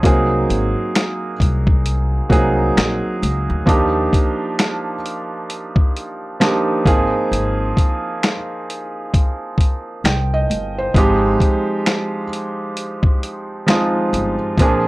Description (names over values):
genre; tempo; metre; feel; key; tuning
lo-fi hip hop; 66 BPM; 4/4; swing 60% on 16ths; unclear; A4 = 440 Hz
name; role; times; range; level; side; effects
felt-muted upright piano; accompaniment; 0.0-14.9 s; F3 to G5; -19 LUFS; right 2 dB; cassette tape, plate reverb
upright bass; bass; 0.0-14.9 s; G1 to Eb2; -20 LUFS; left 1 dB; none
dusty soul sampler-style drum kit; drums; 0.0-14.8 s; finger snaps, hi-hat, kick drum, snare drum; -16 LUFS; equal; none
room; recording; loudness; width
light reverb; none; -16 LUFS; side -20 dB against mid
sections
0.0-3.7 A section; 3.7-14.9 B section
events
none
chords
0.0 Ab7; 3.7 Ebmaj7; 6.9 Ab69; 10.9 Fm9/Ab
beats
| 0.04 0.94 1.85 2.76 | 3.67 4.58 5.49 6.40 | 7.31 8.22 9.13 10.04 | 10.94 11.85 12.76 13.67 | 14.58